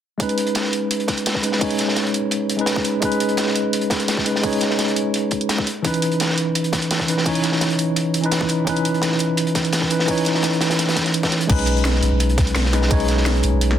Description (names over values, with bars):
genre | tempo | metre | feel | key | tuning
liquid drum and bass | 170 BPM | 4/4 | straight | unclear | A4 = 440 Hz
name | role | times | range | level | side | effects
tine electric piano | accompaniment | 0.2-13.8 s | E3 to C#5 | -20 LUFS | equal | medium stereo tremolo, low-pass filter, ping-pong delay
crunchy breakbeat drum kit | drums | 0.2-13.7 s | hi-hat, snare drum | -24 LUFS | equal | high-pass filter on hats, high-pass filter on snare, high-pass filter on room
drum and bass drum kit | drums | 0.2-13.8 s | crash cymbal, hi-hat, snare drum | -26 LUFS | right 1 dB | none
electronic kick drum | drums | 0.2-13.0 s | none | -23 LUFS | equal | high-pass filter on kick
warm sub bass | bass | 11.5-13.8 s | B1 | -19 LUFS | equal | none
room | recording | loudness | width
moderate plate reverb, RT60 1.1 s, studio reverb | dense, heavily limited modern master | -17 LUFS | side -10 dB against mid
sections
0.2-11.5 A section; 11.5-13.8 B section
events
drop 11.5-13.8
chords
0.2 B69; 5.7 C#m9; 11.5 B69